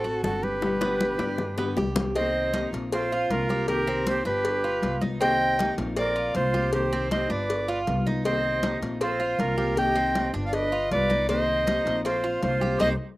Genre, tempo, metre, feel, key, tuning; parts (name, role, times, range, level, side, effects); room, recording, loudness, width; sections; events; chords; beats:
latin, Cuban son and guajira; 158 BPM; 4/4; straight; C minor; A4 = 440 Hz
breathy soprano saxophone; melody; 0.0-12.9 s; A4 to G5; -26 LUFS; equal
breathy bright jazz flute; second line; 0.0-12.9 s; F4 to Eb5; -31 LUFS; right 4 dB
nylon-string guitar; accompaniment; 0.0-12.9 s; B2 to G4; -32 LUFS; left 3 dB
Cuban tres; arpeggios; 0.0-12.9 s; B3 to G4; -32 LUFS; right 2 dB; slapback echo
upright bass; bass; 0.0-12.9 s; G1 to G2; -32 LUFS; equal
congas; percussion; 0.0-12.9 s; -32 LUFS; left 2 dB
bongos and cowbell; percussion; 0.2-12.9 s; -32 LUFS; left 3 dB
little or no reverb; recorded outdoors, with no room sound; -23 LUFS; side -18 dB against mid
0.0-2.2 A section; 2.2-13.2 B section
drum fill 0.6-2.2; band accent 12.8-13.2
0.0 D7; 0.6 G; 2.2 Cm7; 2.9 Bbadd9; 3.7 Cm7; 4.4 G7; 5.2 Cm7; 6.0 Bbadd9; 6.7 Cm7; 7.5 G7; 8.2 Cm7; 9.0 Bbadd9; 9.8 Cm7; 10.5 G7; 11.3 Cm7; 12.0 Bbadd9
0.24 | 0.62 1.01 1.39 1.77 | 2.15 2.53 2.92 3.30 | 3.68 4.06 4.44 4.82 | 5.21 5.59 5.97 6.35 | 6.73 7.11 7.49 7.87 | 8.25 8.63 9.01 9.39 | 9.77 10.15 10.53 10.91 | 11.29 11.67 12.05 12.43 | 12.80